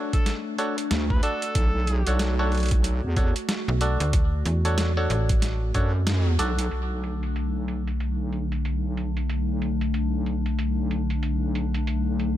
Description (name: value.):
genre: glitch hop.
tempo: 93 BPM.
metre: 4/4.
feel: swing 60% on 16ths.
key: B minor.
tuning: A4 = 441 Hz.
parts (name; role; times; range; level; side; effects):
warbly tape-like pad; sustained chords; 0.0-12.4 s; D3 to F#4; -31 LUFS; left 3 dB; chorus, built-in reverb, sidechain pumping.
bright clav; stabs; 0.0-7.0 s; D4 to D5; -30 LUFS; equal; vintage 12-bit sampler grit, sidechain pumping, tape echo.
overdriven harmonica; melody; 0.1-2.1 s; A4 to B4; -34 LUFS; equal; vintage 12-bit sampler grit, tape echo.
boom bap sampler-style drum kit; drums; 0.1-12.4 s; hi-hat, rim click, snare drum; -32 LUFS; right 1 dB; overdrive, low-pass filter on hats, low-pass filter on snare, low-pass filter on room.
electronic kick drum; drums; 0.1-5.9 s; none; -22 LUFS; equal; overdrive.
wobble bass; bass; 0.9-12.4 s; B1 to F#2; -25 LUFS; equal; chorus, overdrive.
slap-like FM bass; bass; 3.7-5.7 s; A1 to E2; -23 LUFS; equal; none.
room: little or no reverb.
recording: none.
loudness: -22 LUFS.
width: side -13 dB against mid.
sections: 0.0-6.7 A section; 6.7-12.4 B section.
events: kick drops out 6.1-6.7; band accent 6.1-6.4.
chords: 0.0 Bm9; 6.7 Bm7.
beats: 0.26 0.91 | 1.55 2.20 2.84 3.49 | 4.13 4.78 5.42 6.07 | 6.71 7.36 8.00 8.65 | 9.29 9.94 10.59 11.23 | 11.88.